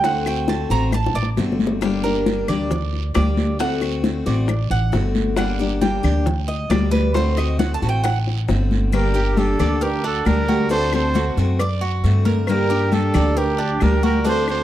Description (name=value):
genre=latin, Cuban son and guajira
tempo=135 BPM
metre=4/4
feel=straight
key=G harmonic minor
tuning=A4 = 440 Hz
part: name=picked steel-string acoustic guitar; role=accompaniment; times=0.0-14.6 s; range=D3 to G4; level=-24 LUFS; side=left 5 dB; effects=none
part: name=Cuban tres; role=arpeggios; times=0.0-14.6 s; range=D4 to Bb5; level=-25 LUFS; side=right 5 dB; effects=none
part: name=upright bass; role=bass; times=0.0-14.6 s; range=G1 to G2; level=-21 LUFS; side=equal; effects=none
part: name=bongos and cowbell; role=percussion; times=0.0-14.5 s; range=none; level=-28 LUFS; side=left 4 dB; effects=none
part: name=congas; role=percussion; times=0.0-14.6 s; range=none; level=-24 LUFS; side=left 1 dB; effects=none
part: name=guiro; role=percussion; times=0.0-14.6 s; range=none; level=-38 LUFS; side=right 16 dB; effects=none
part: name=claves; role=percussion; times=0.3-14.6 s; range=none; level=-34 LUFS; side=left 14 dB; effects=none
part: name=breathy trumpet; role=melody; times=8.9-14.6 s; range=G4 to C5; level=-24 LUFS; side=right 1 dB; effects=none
part: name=dark studio violin section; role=second line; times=8.9-14.6 s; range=D4 to A4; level=-27 LUFS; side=right 5 dB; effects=none
room=studio ambience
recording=dry, close 1970s-style studio recording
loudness=-17 LUFS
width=side -12 dB against mid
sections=0.0-8.9 A section; 8.9-14.6 B section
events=Cuban tres solo 0.0-8.9; drum fill 0.9-1.8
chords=0.0 D7; 1.8 Gm; 3.6 D7; 5.4 Gm; 7.2 D7; 8.9 Gm; 10.7 D7; 12.5 Gm